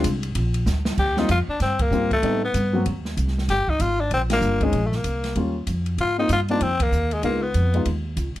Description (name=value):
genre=jazz, small-group swing and bop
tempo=192 BPM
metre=4/4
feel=swing 61% on 8ths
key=Eb major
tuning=A4 = 440 Hz
part: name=warm baby grand piano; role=accompaniment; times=0.0-7.9 s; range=Gb3 to Gb4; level=-25 LUFS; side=left 2 dB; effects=none
part: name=upright bass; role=bass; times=0.0-8.4 s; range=G1 to A2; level=-24 LUFS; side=equal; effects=none
part: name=open jazz drum kit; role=drums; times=0.0-8.4 s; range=crash cymbal, hi-hat, kick drum, ride cymbal, snare drum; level=-29 LUFS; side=right 1 dB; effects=none
part: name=growling tenor saxophone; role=melody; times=1.0-7.9 s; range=Ab3 to G4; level=-23 LUFS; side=left 2 dB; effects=none
room=light reverb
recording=dark, warm production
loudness=-20 LUFS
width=side -15 dB against mid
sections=1.0-8.4 A section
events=drum fill 0.7-1.0; band accent 1.8, 4.3, 6.8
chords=0.4 Bb; 1.0 Eb69; 2.2 Am7b5; 2.9 Cm; 3.5 Gm7; 4.7 Bbsus2; 5.4 Eb9; 6.0 Ab69; 7.2 Db9